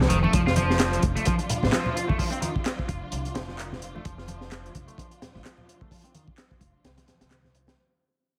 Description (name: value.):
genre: breakbeat, breaks.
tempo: 129 BPM.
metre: 4/4.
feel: swing 57% on 16ths.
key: F mixolydian.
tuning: A4 = 440 Hz.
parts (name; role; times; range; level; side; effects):
dark studio string section; sustained chords; 0.0-7.8 s; F3 to A4; -36 LUFS; equal; sidechain pumping.
upright bass; bass; 0.0-7.7 s; F1 to C2; -31 LUFS; equal; tube saturation, low-pass filter.
crunchy breakbeat drum kit; drums; 0.0-7.8 s; hi-hat, kick drum, snare drum; -29 LUFS; equal; none.
congas; percussion; 0.0-7.8 s; none; -34 LUFS; equal; none.
high-gain distorted guitar; riff; 0.1-7.8 s; Eb3 to F4; -32 LUFS; equal; distortion, tube saturation, low-pass filter, delay.
electronic handclaps; drums; 0.8-7.4 s; none; -38 LUFS; equal; none.
room: light reverb, studio reverb.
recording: heavily compressed radio sound, multiband compression.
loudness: -25 LUFS.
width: mono.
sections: 0.0-7.8 A section.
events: fade-out 0.0-7.8; filter sweep on distorted electric guitar 0.0-7.8.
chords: 0.0 F.